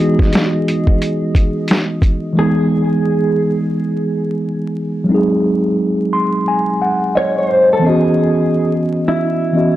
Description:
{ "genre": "lo-fi hip hop", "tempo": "88 BPM", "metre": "4/4", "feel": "swing 62% on 16ths", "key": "E major", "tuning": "A4 = 440 Hz", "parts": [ { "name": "mellow tine electric piano", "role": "accompaniment", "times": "0.0-9.8 s", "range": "E3 to B#5", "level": "-15 LUFS", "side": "equal", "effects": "medium stereo tremolo, low-pass filter" }, { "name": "warbly tape-like pad", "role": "sustained chords", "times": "0.0-2.3 s", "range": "G#4 to D#5", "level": "-26 LUFS", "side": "left 1 dB", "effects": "chorus, built-in reverb, low-pass filter" }, { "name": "lo-fi sampler-style drum kit", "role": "drums", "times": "0.2-2.2 s", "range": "hi-hat, kick drum, snare drum", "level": "-13 LUFS", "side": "equal", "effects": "none" }, { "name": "mellow electric guitar", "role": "melody", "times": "2.4-9.8 s", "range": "E4 to C#5", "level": "-18 LUFS", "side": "right 1 dB", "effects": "spring reverb, low-pass filter, analog delay" } ], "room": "moderate studio reverb, RT60 0.6 s", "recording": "dry, gritty hardware recording, transformer saturation, vinyl crackle", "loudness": "-13 LUFS", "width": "side -14 dB against mid", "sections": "0.0-2.4 A section; 2.4-9.8 B section", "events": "none", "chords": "0.0 Emaj7; 5.1 G#7; 7.8 C#m11", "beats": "0.32 1.00 1.69 | 2.37 3.05 3.73 4.41 | 5.09 5.78 6.46 7.14 | 7.82 8.50 9.19" }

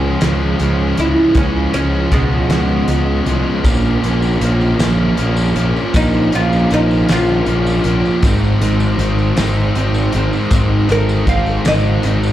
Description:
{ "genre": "indie rock", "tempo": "52 BPM (dotted quarters)", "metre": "6/8", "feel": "straight", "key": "Db major", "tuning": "A4 = 440 Hz", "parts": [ { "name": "oud", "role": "melody", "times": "0.0-12.3 s", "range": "Cb3 to F5", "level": "-19 LUFS", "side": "equal", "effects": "tape echo" }, { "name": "raw garage guitar", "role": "riff", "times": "0.0-12.3 s", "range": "Ab2 to Eb4", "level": "-21 LUFS", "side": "right 7 dB", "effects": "overdrive, ensemble chorus, slapback echo, tape echo" }, { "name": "scooped high-gain guitar", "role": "riff", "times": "0.0-12.3 s", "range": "Ab2 to Eb4", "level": "-21 LUFS", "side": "left 5 dB", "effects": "distortion" }, { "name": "fuzz picked electric bass", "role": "bass", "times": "0.0-12.3 s", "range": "Ab1 to Db2", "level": "-16 LUFS", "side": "equal", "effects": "overdrive" }, { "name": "loose indie drum kit", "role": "drums", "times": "0.2-12.2 s", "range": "hi-hat, kick drum, snare drum", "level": "-19 LUFS", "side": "equal", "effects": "none" }, { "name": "tambourine", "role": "percussion", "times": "3.6-12.3 s", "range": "none", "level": "-35 LUFS", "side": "right 3 dB", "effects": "none" } ], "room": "little or no reverb", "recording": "live gig heard through the venue's PA, club reverb", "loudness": "-12 LUFS", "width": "side -12 dB against mid", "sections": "0.0-12.3 A section", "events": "oud solo 0.0-12.3", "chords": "0.0 Db; 3.7 Bbm; 8.2 Ab", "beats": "0.22 | 1.37 2.52 | 3.66 4.80 | 5.95 7.09 | 8.23 9.38 | 10.52 11.66" }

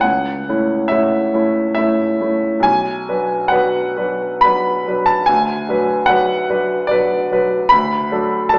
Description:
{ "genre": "classical, romantic nocturne for solo piano", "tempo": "61-77 BPM", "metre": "3/4", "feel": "rubato", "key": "unclear", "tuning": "A4 = 440 Hz", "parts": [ { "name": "clear concert grand piano", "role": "solo", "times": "0.0-8.6 s", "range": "B1 to B5", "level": "-14 LUFS", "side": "equal", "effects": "none" } ], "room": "wet recital hall reverb, RT60 1.6 s", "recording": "heard from further back in the room, small speaker sound", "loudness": "-14 LUFS", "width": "side -33 dB against mid", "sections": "0.0-8.6 A section", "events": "none", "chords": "0.1 A/C#; 2.7 Bm; 5.3 Bm/D; 7.7 D", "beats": "| 0.05 0.93 1.78 | 2.65 3.51 4.43 | 5.29 6.08 6.90 | 7.71 8.53" }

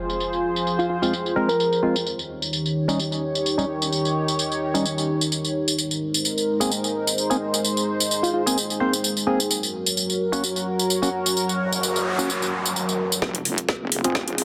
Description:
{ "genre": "bass house", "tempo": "129 BPM", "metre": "4/4", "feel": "swing 54% on 16ths", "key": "F phrygian", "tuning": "A4 = 440 Hz", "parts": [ { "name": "sweeping resonant pad", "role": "sustained chords", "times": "0.0-14.4 s", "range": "Eb3 to Db5", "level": "-27 LUFS", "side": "equal", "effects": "chorus, sidechain pumping" }, { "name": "impact, noise sweep and riser", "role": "sound effects", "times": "0.0-0.2, 11.7-14.4 s", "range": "none", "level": "-33 LUFS", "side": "equal", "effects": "none" }, { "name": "garage drum kit", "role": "drums", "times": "0.1-14.4 s", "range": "hi-hat, snare drum, tambourine", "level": "-27 LUFS", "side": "equal", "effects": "low-pass filter on cymbals, low-pass filter on perc, low-pass filter on hats, low-pass filter on snare, low-pass filter on room" }, { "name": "soft struck synth lead", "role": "melody", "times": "0.8-2.1, 8.2-8.4 s", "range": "F4 to Bb4", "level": "-27 LUFS", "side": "equal", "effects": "chorus, digital delay" }, { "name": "percussive organ stab", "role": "stabs", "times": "1.0-14.2 s", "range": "G3 to C5", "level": "-29 LUFS", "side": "equal", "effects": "subtle chorus, sidechain pumping, digital delay" }, { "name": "wobble bass", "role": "bass", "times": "13.2-14.4 s", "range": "F1", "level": "-32 LUFS", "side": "equal", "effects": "chorus, overdrive, sidechain pumping, high-pass filter" }, { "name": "electronic kick drum", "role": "drums", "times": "13.2-14.3 s", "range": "none", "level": "-28 LUFS", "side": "equal", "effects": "overdrive, high-pass filter on kick" } ], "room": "moderate plate reverb, RT60 1.7 s, digital ambience", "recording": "dense, heavily limited modern master", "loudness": "-23 LUFS", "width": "mono", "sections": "0.0-13.2 A section; 13.2-14.4 B section", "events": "impact 0.0; noise sweep 11.7-13.2; build-up 13.2-14.4; drum fill 13.2-14.4", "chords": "0.0 Fm; 2.1 Eb7; 5.8 Abadd9; 9.5 Gb; 13.2 Fm", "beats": "| 0.20 0.66 1.13 1.59 | 2.06 2.52 2.99 3.45 | 3.92 4.38 4.85 5.31 | 5.78 6.24 6.71 7.17 | 7.64 8.11 8.57 9.04 | 9.50 9.96 10.43 10.89 | 11.36 11.83 12.29 12.76 | 13.22 13.69 14.15" }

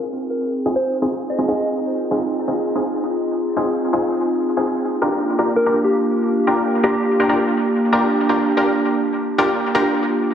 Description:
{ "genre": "drum and bass", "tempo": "165 BPM", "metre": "4/4", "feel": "straight", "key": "F dorian", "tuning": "A4 = 440 Hz", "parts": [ { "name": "warbly tape-like pad", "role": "sustained chords", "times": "0.0-10.3 s", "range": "Bb3 to Ab4", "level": "-20 LUFS", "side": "right 1 dB", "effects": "chorus, built-in reverb, vintage 12-bit sampler grit" }, { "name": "orchestra-hit-like synth stab", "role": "stabs", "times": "0.7-9.8 s", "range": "C4 to Bb4", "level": "-20 LUFS", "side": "left 1 dB", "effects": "built-in reverb, cassette tape, dub echo" }, { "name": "soft struck synth lead", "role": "melody", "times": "0.8-1.7, 5.6-7.2 s", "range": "G4 to Eb5", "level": "-24 LUFS", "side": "left 1 dB", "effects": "chorus, dub echo" } ], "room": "wet plate reverb, RT60 1.6 s, digital ambience", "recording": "heavily compressed radio sound, multiband compression, low-pass filter", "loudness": "-17 LUFS", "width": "side -8 dB against mid", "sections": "0.0-10.3 A section", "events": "filter sweep on ambient pad 0.0-10.3; filter sweep on synth stab 0.0-10.3; filter sweep 0.0-10.3", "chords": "0.0 Fm7; 4.8 Gm7", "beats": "0.11 | 0.47 0.84 1.20 1.57 | 1.93 2.29 2.66 3.02 | 3.38 3.75 4.11 4.47 | 4.84 5.20 5.57 5.93 | 6.29 6.66 7.02 7.38 | 7.75 8.11 8.47 8.84 | 9.20 9.57 9.93 10.29" }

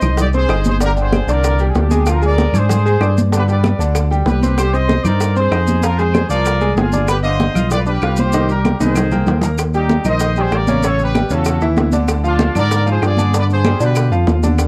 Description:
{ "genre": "latin, salsa", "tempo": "192 BPM", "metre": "4/4", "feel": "straight", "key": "unclear", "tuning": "A4 = 440 Hz", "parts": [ { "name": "clear trumpet section", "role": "melody", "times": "0.0-14.1 s", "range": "D4 to Eb5", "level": "-23 LUFS", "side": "equal", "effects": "none" }, { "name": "bright concert grand piano", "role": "accompaniment", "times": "0.0-14.7 s", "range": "Db3 to F6", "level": "-23 LUFS", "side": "equal", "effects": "none" }, { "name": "smooth gliding synth bass", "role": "bass", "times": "0.0-14.7 s", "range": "G1 to B2", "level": "-19 LUFS", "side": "equal", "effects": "none" }, { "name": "claves", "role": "percussion", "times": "0.0-14.7 s", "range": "none", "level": "-33 LUFS", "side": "equal", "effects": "none" }, { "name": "congas", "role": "percussion", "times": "0.0-14.7 s", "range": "none", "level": "-23 LUFS", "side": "equal", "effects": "none" }, { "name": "maracas", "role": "percussion", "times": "0.0-14.7 s", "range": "none", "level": "-34 LUFS", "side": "equal", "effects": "none" }, { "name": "bongos", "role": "percussion", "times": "0.2-14.7 s", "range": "none", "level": "-27 LUFS", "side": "equal", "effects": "none" } ], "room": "little or no reverb", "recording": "dry, close 1970s-style studio recording", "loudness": "-15 LUFS", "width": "mono", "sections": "0.0-9.6 A section; 9.6-14.7 B section", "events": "drum fill 8.6-9.6", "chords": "0.0 Cm; 0.8 Gsus4; 2.1 Ddim; 3.3 G; 4.6 Cm; 5.8 Fm; 7.1 G7; 8.3 Cm7; 9.6 Ebmaj7; 10.8 A7; 12.1 Ddim; 13.3 G7", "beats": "0.19 0.50 | 0.82 1.13 1.44 1.76 | 2.07 2.38 2.70 3.01 | 3.33 3.64 3.95 4.27 | 4.58 4.89 5.21 5.52 | 5.83 6.14 6.46 6.77 | 7.08 7.40 7.71 8.02 | 8.34 8.65 8.96 9.27 | 9.59 9.90 10.21 10.52 | 10.84 11.15 11.46 11.77 | 12.09 12.40 12.71 13.02 | 13.34 13.65 13.96 14.27 | 14.59" }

